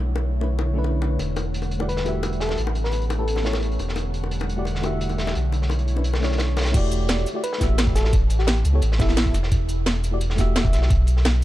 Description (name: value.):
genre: liquid drum and bass.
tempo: 173 BPM.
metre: 4/4.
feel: straight.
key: E dorian.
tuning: A4 = 439 Hz.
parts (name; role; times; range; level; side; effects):
airy breathy pad; sustained chords; 0.0-6.7 s; D3 to F#5; -32 LUFS; equal; chorus, sidechain pumping.
sub bass with octave; bass; 0.0-11.4 s; E1 to C#2; -22 LUFS; equal; tube saturation.
bongos; percussion; 0.2-6.6 s; none; -34 LUFS; left 5 dB; none.
mellow FM electric piano; accompaniment; 0.4-10.9 s; A3 to E5; -30 LUFS; left 1 dB; chorus, dub echo.
crunchy breakbeat drum kit; drums; 1.2-11.4 s; hi-hat, snare drum; -32 LUFS; equal; high-pass filter on hats, high-pass filter on snare, high-pass filter on room.
soft struck synth lead; melody; 1.9-3.7, 7.4-9.3 s; E4 to B4; -32 LUFS; left 1 dB; chorus, dub echo.
drum and bass drum kit; drums; 6.7-11.3 s; cabasa, crash cymbal, hi-hat, snare drum; -27 LUFS; equal; low-pass filter on hats, low-pass filter on cymbals, low-pass filter on perc, low-pass filter on snare, low-pass filter on room.
electronic kick drum; drums; 6.7-11.0 s; none; -21 LUFS; equal; none.
room: little or no reverb.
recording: dark, warm production.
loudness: -20 LUFS.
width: side -15 dB against mid.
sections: 0.0-6.7 A section; 6.7-11.4 B section.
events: filter sweep on analog synth pad 0.0-6.7; drop 6.7-11.4.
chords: 0.0 Bm11; 1.2 Em11; 2.6 A9; 3.8 Em11; 5.4 Bm11; 6.7 Em11; 8.1 A9; 9.3 Emadd9; 10.9 N.C..